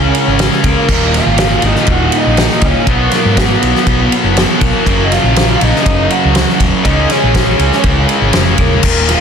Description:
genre	quiet-loud alternative rock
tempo	121 BPM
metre	4/4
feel	straight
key	unclear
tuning	A4 = 437 Hz
part	lead guitar through a small cranked amp	melody	0.0-9.2 s	Bb3 to Gb5	-17 LUFS	equal	overdrive
part	fuzz guitar	riff	0.0-8.8 s	Eb2 to Db4	-17 LUFS	right 10 dB	distortion
part	tight distorted guitar	riff	0.0-9.2 s	Eb2 to Db4	-16 LUFS	left 11 dB	distortion
part	hollow-body short-scale fingered electric bass	bass	0.0-9.1 s	Eb1 to Ab2	-15 LUFS	equal	none
part	loose indie drum kit	drums	0.1-9.2 s	crash cymbal, kick drum, ride cymbal, snare drum	-14 LUFS	equal	none
room	light reverb, small room ambience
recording	dense, heavily limited modern master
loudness	-9 LUFS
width	side -7 dB against mid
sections	0.0-8.8 A section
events	none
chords	0.0 Db5; 0.9 Ebm; 2.9 B5; 4.9 Gb; 6.8 Dbsus2

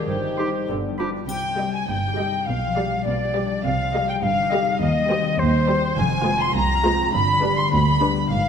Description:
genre	cinematic, playful, whimsical film cue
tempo	102 BPM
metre	2/4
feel	straight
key	C minor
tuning	A4 = 440 Hz
part	vibraphone with soft mallets	melody	0.0-0.6 s	C5	-30 LUFS	right 1 dB	none
part	warm studio violin section	second line	0.0-8.5 s	G4 to C6	-27 LUFS	left 2 dB	none
part	warm French horn section	sustained chords	0.0-1.0 s	G3 to Eb4	-33 LUFS	left 3 dB	none
part	concert harp	arpeggios	0.0-8.5 s	F2 to D5	-27 LUFS	left 7 dB	none
part	dark chamber double bass section	bass	0.1-8.5 s	F1 to Eb2	-28 LUFS	right 3 dB	none
part	dark studio cello section	bass	0.1-8.5 s	C2 to C3	-28 LUFS	right 3 dB	none
part	dark studio violin section	melody	0.4-8.2 s	B4 to C6	-35 LUFS	left 3 dB	none
part	clear oboe	second line	0.4-1.1 s	G4	-34 LUFS	right 2 dB	none
part	silver concert flute	second line	0.4-8.5 s	C5 to C6	-24 LUFS	left 1 dB	none
part	warm clarinet	second line	0.4-1.1 s	D4 to Eb4	-37 LUFS	right 1 dB	none
part	dark studio viola section	accompaniment	0.4-8.2 s	D3 to G4	-28 LUFS	right 2 dB	none
part	triangle and cymbal swell	percussion	1.3-2.4, 8.3-8.5 s	none	-43 LUFS	right 2 dB	none
room	wet scoring stage reverb, RT60 1.7 s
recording	none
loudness	-19 LUFS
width	side -7 dB against mid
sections	0.0-1.3 A section; 1.3-8.5 B section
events	none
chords	0.1 Cm/G; 0.7 G; 1.3 Cm; 2.5 G7/B; 3.6 Cm; 4.8 Cm/Eb; 6.0 Fm; 7.1 G

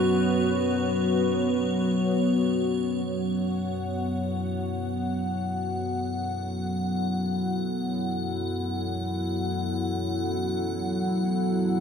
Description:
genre	dark ambient drone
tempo	free time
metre	none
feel	none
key	F# minor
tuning	A4 = 442 Hz
part	dark analog pad	sustained chords	0.0-11.8 s	F#3 to B4	-28 LUFS	equal	chorus
part	analog drone	drone	0.0-11.8 s	F#2 to F#3	-28 LUFS	left 1 dB	chorus
part	icy glass pad	texture	0.0-11.8 s	C#5 to F#5	-34 LUFS	left 1 dB	chorus, built-in reverb
room	wet huge ambient reverb, RT60 8.1 s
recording	none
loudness	-25 LUFS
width	side -7 dB against mid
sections	0.0-3.1 A section; 3.1-11.8 B section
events	none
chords	0.0 F#5; 3.1 F#m

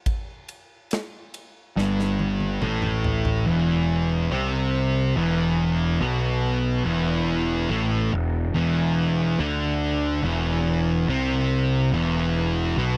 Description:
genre	stoner and doom metal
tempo	71 BPM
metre	4/4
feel	straight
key	E minor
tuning	A4 = 441 Hz
part	big rock drum kit	drums	0.1-3.4 s	kick drum, ride cymbal, snare drum, toms	-32 LUFS	equal	none
part	thick fuzz guitar	riff	1.8-13.0 s	E2 to D4	-28 LUFS	equal	distortion
part	thick fuzz guitar	riff	1.8-13.0 s	E2 to D4	-27 LUFS	equal	distortion
part	fuzz picked electric bass	bass	1.8-13.0 s	E1 to D2	-29 LUFS	equal	overdrive
room	little or no reverb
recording	dry, close 1970s-style studio recording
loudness	-23 LUFS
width	mono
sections	0.0-3.5 A section; 3.5-13.0 B section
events	drum fill 1.8-3.5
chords	0.0 N.C.; 3.5 E5

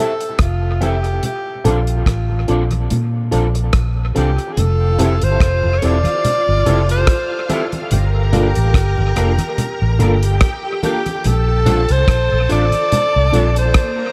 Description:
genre	lovers rock reggae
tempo	72 BPM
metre	4/4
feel	swing 55% on 16ths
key	F major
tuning	A4 = 440 Hz
part	clear alto saxophone	melody	0.0-14.1 s	F4 to D5	-23 LUFS	equal	tape echo
part	FM electric piano with tremolo	accompaniment	0.0-13.5 s	Bb3 to A4	-27 LUFS	equal	phaser, dub echo
part	electric guitar through a small old amp	stabs	0.0-13.6 s	C4 to E5	-29 LUFS	equal	ensemble chorus, dub echo
part	damped 70s drum kit	drums	0.2-14.0 s	hi-hat, kick drum, rim click	-21 LUFS	equal	dub echo
part	vintage muted fingered electric bass	bass	0.4-13.7 s	E1 to Bb2	-18 LUFS	equal	none
part	congas	percussion	0.4-14.0 s	none	-26 LUFS	equal	dub echo
part	string machine, violins	second line	4.6-14.1 s	Bb3 to Bb5	-29 LUFS	equal	ensemble chorus, dub echo
room	light reverb, small room ambience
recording	none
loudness	-16 LUFS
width	mono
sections	0.0-4.6 A section; 4.6-14.1 B section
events	none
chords	0.0 Fmaj9; 1.2 Bbmaj7; 4.6 Fmaj7; 7.9 Gm7; 11.2 Bbmaj7

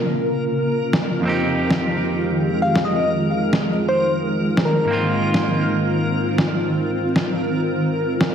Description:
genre	future garage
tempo	132 BPM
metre	4/4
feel	swing 61% on 16ths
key	unclear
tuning	A4 = 440 Hz
part	clean electric guitar	accompaniment	0.0-8.3 s	F2 to Ab4	-24 LUFS	right 2 dB	vintage 12-bit sampler grit, digital delay
part	granular cloud pad	sustained chords	0.0-8.3 s	Db3 to Bb4	-22 LUFS	equal	built-in reverb, vintage 12-bit sampler grit
part	backwards swelling texture	texture	0.0-8.3 s	Bb4	-30 LUFS	equal	built-in reverb
part	electronic snare drum	drums	0.9-8.3 s	none	-22 LUFS	equal	none
part	soft struck synth lead	melody	2.6-4.9 s	Bb4 to F5	-23 LUFS	left 2 dB	chorus, digital delay
room	wet lush hall reverb, RT60 1.6 s, digital ambience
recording	heavily compressed radio sound, vinyl crackle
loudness	-17 LUFS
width	side -8 dB against mid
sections	0.0-8.3 A section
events	filter sweep on ambient pad 0.0-8.3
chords	0.0 Bbm7; 1.3 Fm9; 4.9 Ab6

